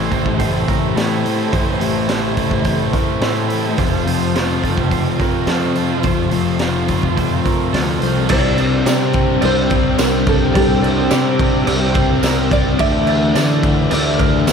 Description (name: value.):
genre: rock, shoegaze and dream pop.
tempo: 106 BPM.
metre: 4/4.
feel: straight.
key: C major.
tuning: A4 = 439 Hz.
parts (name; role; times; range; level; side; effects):
chorused pulse-width pad; sustained chords; 0.0-14.5 s; E3 to A5; -24 LUFS; right 2 dB; none.
direct-recorded clean electric guitar; arpeggios; 0.0-14.5 s; A4 to D5; -26 LUFS; right 8 dB; lush chorus, ping-pong delay.
biting overdriven guitar; riff; 0.0-8.3 s; A2 to F4; -23 LUFS; right 9 dB; reverse reverb.
thick fuzz guitar; riff; 0.0-14.5 s; F2 to D4; -21 LUFS; left 11 dB; distortion, wide subtle chorus.
fuzz picked electric bass; bass; 0.0-14.5 s; F1 to D3; -21 LUFS; right 1 dB; overdrive.
raw garage drum kit; drums; 0.1-14.5 s; crash cymbal, hi-hat, kick drum, snare drum; -20 LUFS; right 1 dB; none.
nylon-string guitar; melody; 8.0-14.5 s; G4 to E5; -22 LUFS; equal; analog chorus, ping-pong delay.
crunchy overdriven guitar; riff; 8.3-14.5 s; C3 to D4; -22 LUFS; right 1 dB; spring reverb.
tambourine; percussion; 8.9-14.5 s; none; -30 LUFS; right 18 dB; none.
room: moderate plate reverb, RT60 1.7 s.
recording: dreamy mix soaked in reverb.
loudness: -14 LUFS.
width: side -6 dB against mid.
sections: 0.0-8.3 A section; 8.3-14.5 B section.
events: none.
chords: 0.0 Am7; 3.8 F; 8.3 Csus2; 12.8 Dsus2.